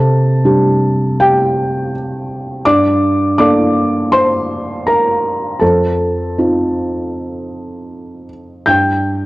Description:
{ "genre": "neoclassical minimalist piano", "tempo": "80 BPM", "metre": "4/4", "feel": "rubato", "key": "unclear", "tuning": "A4 = 441 Hz", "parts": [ { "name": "felt-muted upright piano", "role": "solo", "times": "0.0-9.3 s", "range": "F2 to G6", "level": "-12 LUFS", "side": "equal", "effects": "cassette tape" } ], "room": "light reverb, studio reverb", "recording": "home recording on cassette", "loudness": "-12 LUFS", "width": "side -19 dB against mid", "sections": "0.0-9.3 A section", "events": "none", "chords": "0.0 Csus2; 2.7 Gmadd9; 5.6 F7; 8.7 N.C." }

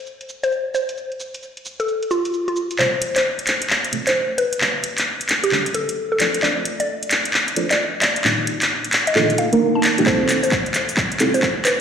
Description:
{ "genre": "UK garage, two-step garage", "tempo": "132 BPM", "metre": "4/4", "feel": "swing 64% on 16ths", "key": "unclear", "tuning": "A4 = 440 Hz", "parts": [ { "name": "house drum kit", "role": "drums", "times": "0.1-11.8 s", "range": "cabasa, handclaps, hi-hat", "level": "-19 LUFS", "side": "equal", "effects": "overdrive, low-pass filter on perc, low-pass filter on hats, low-pass filter on snare, low-pass filter on room" }, { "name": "mallet-like synth pluck", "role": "melody", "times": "0.4-11.8 s", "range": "F4 to A5", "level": "-22 LUFS", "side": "equal", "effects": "chorus, digital delay" }, { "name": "deep mellow chord stab", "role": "stabs", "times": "2.8-11.3 s", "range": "Bb3 to D5", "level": "-22 LUFS", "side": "right 2 dB", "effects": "chorus, phaser, dub echo" }, { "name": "electronic kick drum", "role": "drums", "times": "10.1-11.5 s", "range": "none", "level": "-24 LUFS", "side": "equal", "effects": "overdrive" } ], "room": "wet plate reverb, RT60 1.2 s, digital ambience", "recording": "played on a big sound system in a bare room, large studio reverb, high-pass filter", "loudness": "-17 LUFS", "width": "side -7 dB against mid", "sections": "0.0-2.8 A section; 2.8-11.8 B section", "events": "build-up 2.8-11.8; drum fill 2.8-11.8; filter sweep on synth stab 2.8-11.8; filter sweep on synth pluck 2.8-11.8", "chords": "0.0 N.C.; 2.8 Fmaj9/C; 4.4 Gmaj9#11/D; 6.2 Bbmaj9/F; 8.2 Ebmaj9#11/Bb; 10.1 Fmaj9/C" }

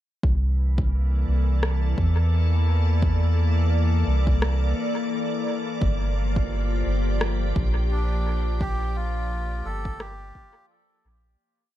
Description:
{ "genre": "ambient dub", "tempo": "86 BPM", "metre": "4/4", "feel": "swing 57% on 16ths", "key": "G dorian", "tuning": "A4 = 440 Hz", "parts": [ { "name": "soft additive organ-like pad", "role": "sustained chords", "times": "0.6-11.4 s", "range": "E3 to D5", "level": "-29 LUFS", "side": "left 1 dB", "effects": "ensemble chorus, built-in reverb" }, { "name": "soft dub sub bass", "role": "bass", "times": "0.2-11.4 s", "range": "G1 to E2", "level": "-22 LUFS", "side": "equal", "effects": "none" }, { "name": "electronic kick drum", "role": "drums", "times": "0.2-10.5 s", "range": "none", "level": "-25 LUFS", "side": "equal", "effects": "overdrive" }, { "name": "electronic rim click", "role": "drums", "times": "1.6-10.2 s", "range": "none", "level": "-31 LUFS", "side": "left 1 dB", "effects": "dub echo" }, { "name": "melodica", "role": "melody", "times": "7.9-10.7 s", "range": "D4 to A4", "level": "-34 LUFS", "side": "equal", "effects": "dub echo" } ], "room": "little or no reverb", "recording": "echo-heavy mix", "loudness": "-21 LUFS", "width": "side -13 dB against mid", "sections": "0.2-11.4 groove", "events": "fade-out 7.7-11.4", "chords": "0.2 C13; 5.8 Gm7" }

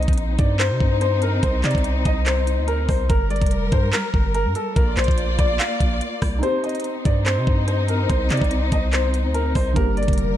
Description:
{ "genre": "hip hop, trap", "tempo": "144 BPM", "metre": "4/4", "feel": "half-time", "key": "C minor", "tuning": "A4 = 439 Hz", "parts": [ { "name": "warm baby grand piano", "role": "melody", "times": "0.0-10.4 s", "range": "A4 to F5", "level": "-25 LUFS", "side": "left 1 dB", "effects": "wide subtle chorus, analog delay" }, { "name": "warm symphonic string section", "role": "sustained chords", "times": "0.0-10.4 s", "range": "G3 to D5", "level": "-26 LUFS", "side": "left 2 dB", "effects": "none" }, { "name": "long sustained 808-style bass", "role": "bass", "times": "0.0-10.4 s", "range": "F1 to C3", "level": "-22 LUFS", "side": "equal", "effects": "none" }, { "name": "trap drum kit", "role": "drums", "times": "0.0-10.3 s", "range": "handclaps, hi-hat, kick drum, rim click", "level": "-21 LUFS", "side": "equal", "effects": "vintage 12-bit sampler grit" }, { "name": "felt-muted upright piano", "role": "accompaniment", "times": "6.4-10.4 s", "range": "D3 to C5", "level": "-30 LUFS", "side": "right 2 dB", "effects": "none" } ], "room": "light reverb, studio reverb", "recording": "none", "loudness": "-18 LUFS", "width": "side -12 dB against mid", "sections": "0.0-10.4 A section", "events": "kick muted 6.4-6.8", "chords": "0.0 Cm; 3.1 Gm; 4.8 Bb; 6.4 Cm; 9.8 Gm" }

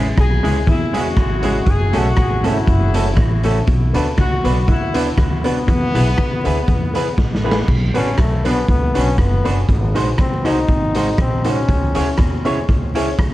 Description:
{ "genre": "ska", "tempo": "120 BPM", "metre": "4/4", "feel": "swing 54% on 8ths", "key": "B dorian", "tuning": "A4 = 441 Hz", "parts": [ { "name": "semi-hollow electric guitar", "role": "accompaniment", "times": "0.0-13.1 s", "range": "G#3 to C#5", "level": "-25 LUFS", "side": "right 4 dB", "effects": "dub echo" }, { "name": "electric guitar at the edge of break-up", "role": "riff", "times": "0.0-7.3 s", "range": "F#2 to E3", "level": "-27 LUFS", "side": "left 4 dB", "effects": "none" }, { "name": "warm upright piano", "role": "stabs", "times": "0.0-13.1 s", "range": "G#3 to C#5", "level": "-24 LUFS", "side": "left 3 dB", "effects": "dub echo" }, { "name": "upright bass", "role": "bass", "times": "0.0-13.3 s", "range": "F#1 to E2", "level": "-20 LUFS", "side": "equal", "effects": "none" }, { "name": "warm horn section", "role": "melody", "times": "0.2-7.1 s", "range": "B3 to G#4", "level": "-24 LUFS", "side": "left 2 dB", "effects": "dub echo" }, { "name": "raw garage drum kit", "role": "drums", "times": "0.2-13.3 s", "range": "crash cymbal, hi-hat, kick drum, rim click, snare drum", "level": "-18 LUFS", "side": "equal", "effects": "none" }, { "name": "brilliant trombone", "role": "melody", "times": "8.0-12.2 s", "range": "A3 to D#4", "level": "-23 LUFS", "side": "left 2 dB", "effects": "dub echo" } ], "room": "light reverb, small room ambience", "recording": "dark, warm production, vinyl crackle", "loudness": "-14 LUFS", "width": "side -16 dB against mid", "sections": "0.0-7.7 A section; 7.7-13.3 B section", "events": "drum fill 7.2-7.7; trombone solo 7.7-13.3", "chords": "0.0 C#m; 1.7 F#m; 3.7 Bm; 5.7 E; 7.7 Bm; 9.7 G#7; 11.7 C#m" }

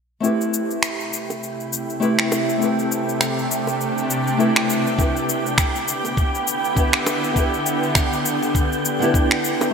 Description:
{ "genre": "sunset chillout", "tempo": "101 BPM", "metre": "4/4", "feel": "swing 58% on 16ths", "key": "A minor", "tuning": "A4 = 440 Hz", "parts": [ { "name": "nylon-string guitar", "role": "accompaniment", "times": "0.2-9.7 s", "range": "A3 to B4", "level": "-23 LUFS", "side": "equal", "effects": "auto-pan, digital delay" }, { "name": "shimmering ambient pad", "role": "sustained chords", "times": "1.3-9.7 s", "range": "C3 to G4", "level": "-24 LUFS", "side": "equal", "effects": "chorus, built-in reverb" }, { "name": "electronic cabasa and finger snaps", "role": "drums", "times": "0.2-9.7 s", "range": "none", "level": "-23 LUFS", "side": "equal", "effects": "overdrive, gated reverb" }, { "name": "wind-like tuned noise texture", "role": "texture", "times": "1.3-9.7 s", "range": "G5", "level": "-29 LUFS", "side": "right 4 dB", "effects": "built-in reverb, wide subtle chorus" }, { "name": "bongos", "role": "percussion", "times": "1.3-9.7 s", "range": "none", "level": "-30 LUFS", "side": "right 2 dB", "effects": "none" }, { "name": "electronic kick drum", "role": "drums", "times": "5.0-9.3 s", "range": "none", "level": "-20 LUFS", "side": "equal", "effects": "none" } ], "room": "wet lush hall reverb, RT60 2.9 s", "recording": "bright 1980s-style digital production", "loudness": "-18 LUFS", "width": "side -6 dB against mid", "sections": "0.2-9.7 A section", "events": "none", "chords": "0.2 Am7; 5.0 Em7" }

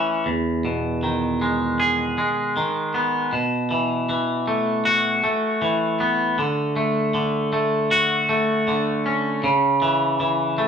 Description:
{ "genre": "rock", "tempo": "78 BPM", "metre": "4/4", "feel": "straight", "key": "E major", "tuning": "A4 = 439 Hz", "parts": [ { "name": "twangy electric guitar", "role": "solo", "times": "0.0-10.7 s", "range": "E2 to G#4", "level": "-19 LUFS", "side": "equal", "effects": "none" } ], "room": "wet studio reverb, RT60 0.6 s", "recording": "band playing live in one room", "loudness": "-19 LUFS", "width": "side -7 dB against mid", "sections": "0.3-10.7 A section", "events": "none", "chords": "0.3 Emaj7; 3.3 B7sus4; 6.4 Dmaj7; 9.4 A/C# (rootless)" }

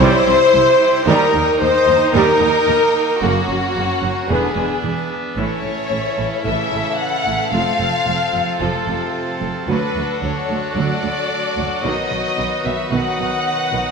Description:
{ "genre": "cinematic", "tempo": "111 BPM", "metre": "4/4", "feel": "straight", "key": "A major from 5.4 s", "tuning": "A4 = 440 Hz", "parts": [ { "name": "warm symphonic violin section", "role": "melody", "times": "0.0-13.9 s", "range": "Gb4 to F#5", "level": "-22 LUFS", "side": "left 4 dB", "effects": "none" }, { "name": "warm symphonic violin section", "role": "second line", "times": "0.0-13.9 s", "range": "E4 to C5", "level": "-22 LUFS", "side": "left 2 dB", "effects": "none" }, { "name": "warm symphonic viola section", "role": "accompaniment", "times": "0.0-13.8 s", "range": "C3 to E4", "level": "-24 LUFS", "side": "right 1 dB", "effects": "none" }, { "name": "bright trombone section", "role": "sustained chords", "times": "0.0-13.9 s", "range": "C3 to B3", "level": "-28 LUFS", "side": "right 3 dB", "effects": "none" }, { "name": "dark French horn section", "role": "sustained chords", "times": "0.0-13.9 s", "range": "A3 to C5", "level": "-20 LUFS", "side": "left 1 dB", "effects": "none" }, { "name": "pipe organ, trumpet", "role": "sustained chords", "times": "0.0-13.9 s", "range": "G3 to C6", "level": "-25 LUFS", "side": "right 1 dB", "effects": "none" }, { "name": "dark symphonic cello section", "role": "bass", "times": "0.0-13.8 s", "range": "C2 to B2", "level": "-25 LUFS", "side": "right 4 dB", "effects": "none" }, { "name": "rich symphonic double bass section", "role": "bass", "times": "0.0-13.8 s", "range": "E1 to Eb2", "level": "-25 LUFS", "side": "right 5 dB", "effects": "none" } ], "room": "wet scoring stage reverb, RT60 1.7 s", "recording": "none", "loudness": "-15 LUFS", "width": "side -5 dB against mid", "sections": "0.0-5.4 A section; 5.4-13.9 B section", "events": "none", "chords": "0.0 C; 1.1 Eb; 3.2 Gb; 4.3 E7; 5.4 A; 7.5 F; 9.7 D; 11.8 B" }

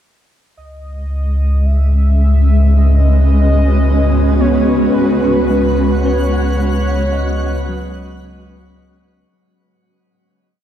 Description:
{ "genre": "ambient", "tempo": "55 BPM", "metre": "4/4", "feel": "straight", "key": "unclear", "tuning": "A4 = 439 Hz", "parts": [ { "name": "warm velvety synth lead", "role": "melody", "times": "0.6-8.8 s", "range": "B4 to E5", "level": "-23 LUFS", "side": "equal", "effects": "chorus" }, { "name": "granular cloud pad", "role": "sustained chords", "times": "1.6-9.3 s", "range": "G#3 to B4", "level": "-17 LUFS", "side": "equal", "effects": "built-in reverb" }, { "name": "warm sub bass", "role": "bass", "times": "0.6-9.3 s", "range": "C#2", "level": "-13 LUFS", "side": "equal", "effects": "none" }, { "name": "tine electric piano", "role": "arpeggios", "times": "4.4-10.6 s", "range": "F#3 to D#5", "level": "-21 LUFS", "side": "equal", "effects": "ping-pong delay" }, { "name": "twinkling granular texture", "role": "texture", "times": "5.2-9.3 s", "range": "F#5 to F#6", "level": "-30 LUFS", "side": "left 2 dB", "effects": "built-in reverb" } ], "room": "moderate shimmer reverb, RT60 8.1 s", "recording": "dark, warm production", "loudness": "-11 LUFS", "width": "side -10 dB against mid", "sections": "0.6-9.3 A section", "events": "fade-in on tine electric piano 0.6-9.3; fade-in on soft synth lead 0.6-9.3; filter sweep on ambient pad 0.6-9.3; fade-out 5.0-9.3", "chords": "0.6 B6/C#; 5.0 C#5" }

